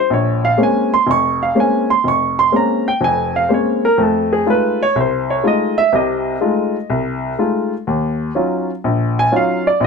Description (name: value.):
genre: solo jazz.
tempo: 124 BPM.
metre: 4/4.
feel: swing 68% on 8ths.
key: Bb minor.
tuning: A4 = 438 Hz.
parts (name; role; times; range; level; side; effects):
warm baby grand piano; solo; 0.0-9.9 s; F1 to Db6; -14 LUFS; equal; none.
room: moderate small room reverb, RT60 0.5 s.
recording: none.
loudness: -14 LUFS.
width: side -5 dB against mid.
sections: 0.0-9.9 A section.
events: grand piano solo 0.0-9.9.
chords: 0.1 Bbm9; 4.0 F7#9; 7.9 Ebm9.